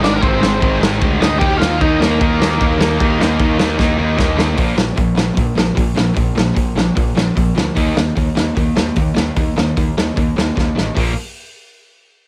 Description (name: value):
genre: punk rock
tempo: 151 BPM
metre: 4/4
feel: straight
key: unclear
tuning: A4 = 440 Hz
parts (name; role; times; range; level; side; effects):
- crunchy overdriven guitar; melody; 0.0-4.1 s; Bb3 to G5; -22 LUFS; equal; none
- distorted electric guitar; riff; 0.0-11.1 s; Ab2 to Eb4; -24 LUFS; equal; distortion
- sludgy distorted guitar; riff; 0.0-11.1 s; Ab2 to Eb4; -24 LUFS; equal; overdrive
- sludgy distorted guitar; riff; 0.0-4.6 s; Ab2 to Eb4; -26 LUFS; equal; none
- modern bright picked electric bass; bass; 0.0-11.1 s; Ab1 to Eb2; -24 LUFS; equal; none
- loose indie drum kit; drums; 0.0-11.1 s; hi-hat, kick drum, ride cymbal, snare drum; -20 LUFS; equal; none
room: light reverb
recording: none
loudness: -16 LUFS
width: mono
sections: 0.0-4.6 A section; 4.6-11.0 B section; 11.0-12.3 C section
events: drum fill 3.8-4.6, 10.6-11.0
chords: 0.0 Ab; 1.4 Eb5; 4.6 Bb5; 7.8 Eb5; 11.0 Bb5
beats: 0.22 0.62 1.01 | 1.41 1.80 2.20 2.60 | 2.99 3.39 3.78 4.18 | 4.58 4.97 5.37 5.77 | 6.17 6.56 6.96 7.36 | 7.76 8.16 8.56 8.96 | 9.36 9.76 10.16 10.56 | 10.96